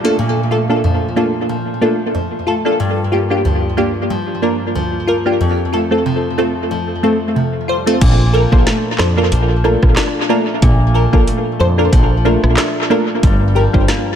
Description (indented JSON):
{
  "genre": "dancehall",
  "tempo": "92 BPM",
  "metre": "4/4",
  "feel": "swing 56% on 16ths",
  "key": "Bb major",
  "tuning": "A4 = 440 Hz",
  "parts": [
    { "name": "wavetable chord stab", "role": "accompaniment", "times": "0.0-13.9 s", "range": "D2 to C5", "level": "-16 LUFS", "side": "equal", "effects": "sidechain pumping, tape echo" },
    { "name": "nylon-string guitar", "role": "arpeggios", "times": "0.0-14.2 s", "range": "F2 to D4", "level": "-19 LUFS", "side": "left 1 dB", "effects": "tape echo" },
    { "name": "downlifter", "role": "sound effects", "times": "0.0-2.8 s", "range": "none", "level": "-36 LUFS", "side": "right 1 dB", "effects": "none" },
    { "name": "woody fretless electric bass", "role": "bass", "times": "8.0-13.9 s", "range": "G1 to F2", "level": "-14 LUFS", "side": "equal", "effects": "none" },
    { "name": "afro-pop drum kit", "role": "drums", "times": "8.0-14.1 s", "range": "crash cymbal, handclaps, hi-hat, kick drum, rim click, snare drum", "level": "-15 LUFS", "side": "equal", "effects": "tape echo" }
  ],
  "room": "light reverb",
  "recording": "echo-heavy mix",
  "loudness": "-12 LUFS",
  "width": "side -9 dB against mid",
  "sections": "0.0-8.0 A section; 8.0-14.2 B section",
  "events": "none",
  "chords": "0.0 Bbmaj7; 2.8 Gm7; 5.4 F; 8.0 Bbmaj7; 13.2 Gm7"
}